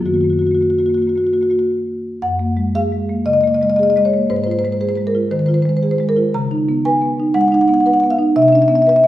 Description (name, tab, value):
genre	classical, contemporary piece for solo marimba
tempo	110-121 BPM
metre	4/4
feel	rubato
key	Gb lydian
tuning	A4 = 435 Hz
part	marimba with soft mallets	solo	0.0-9.1 s	Gb2 to Bb5	-13 LUFS	equal	none
room	wet recital hall reverb, RT60 1.4 s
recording	heard from further back in the room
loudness	-13 LUFS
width	side -14 dB against mid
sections	0.0-2.2 A section; 2.2-9.1 B section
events	none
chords	0.1 Gb6; 2.2 Gb69; 4.3 Ab6; 6.3 Db11; 8.4 Cmaj9